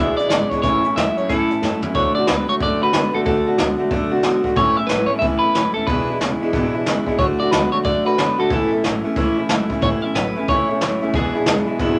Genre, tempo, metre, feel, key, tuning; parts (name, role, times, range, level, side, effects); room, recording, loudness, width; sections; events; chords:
rockabilly; 183 BPM; 4/4; swing 63% on 8ths; A major; A4 = 440 Hz
electric guitar at the edge of break-up; melody; 0.0-12.0 s; G#4 to E5; -23 LUFS; equal; phaser
picked steel-string acoustic guitar; accompaniment; 0.0-12.0 s; E2 to F#4; -24 LUFS; equal
clean electric guitar; riff; 0.0-12.0 s; E2 to B3; -28 LUFS; equal
upright bass; bass; 0.0-12.0 s; E1 to F#2; -34 LUFS; equal
jazz brush drum kit; drums; 0.2-11.9 s; hi-hat, kick drum, snare drum, toms; -25 LUFS; equal
wet small room reverb, RT60 0.5 s; -19 LUFS; mono
0.0-1.9 A section; 1.9-12.0 B section
drum fill 1.6-1.9
0.0 E7; 0.6 A; 1.9 D; 4.6 A; 5.9 E7; 7.2 D; 8.5 A; 11.1 E7